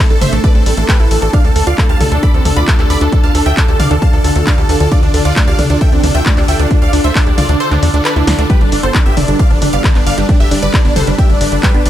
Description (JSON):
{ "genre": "uplifting trance", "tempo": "134 BPM", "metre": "4/4", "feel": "straight", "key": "unclear", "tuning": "A4 = 441 Hz", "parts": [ { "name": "big supersaw lead", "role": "melody", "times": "0.0-11.9 s", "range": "D4 to B5", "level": "-19 LUFS", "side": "equal", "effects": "phaser, sidechain pumping, ping-pong delay" }, { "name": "wide unison pluck", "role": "second line", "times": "0.0-11.9 s", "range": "D4 to B5", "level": "-23 LUFS", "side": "right 1 dB", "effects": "phaser, sidechain pumping" }, { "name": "shimmering ambient pad", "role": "sustained chords", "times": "0.1-11.9 s", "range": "D3 to B4", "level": "-21 LUFS", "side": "left 1 dB", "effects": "chorus, built-in reverb, sidechain pumping" }, { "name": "wide unison pluck", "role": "arpeggios", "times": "0.0-11.9 s", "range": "G2 to D5", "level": "-21 LUFS", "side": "right 4 dB", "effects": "sidechain pumping, ping-pong delay" }, { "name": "tight sequencer bass", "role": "bass", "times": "0.1-11.9 s", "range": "F1 to E2", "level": "-15 LUFS", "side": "equal", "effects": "sidechain pumping" }, { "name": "punchy analog drum machine", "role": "drums", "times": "0.1-11.9 s", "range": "handclaps, hi-hat, snare drum, toms", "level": "-19 LUFS", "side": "left 1 dB", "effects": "none" }, { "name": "electronic kick drum", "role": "drums", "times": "0.4-11.7 s", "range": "none", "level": "-12 LUFS", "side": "equal", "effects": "none" } ], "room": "little or no reverb", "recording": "none", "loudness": "-9 LUFS", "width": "side -12 dB against mid", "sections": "0.0-11.9 A section", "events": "kick drops out 7.6-8.5; drum fill 8.3", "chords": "0.0 Am; 1.3 Dm; 8.5 Gadd9" }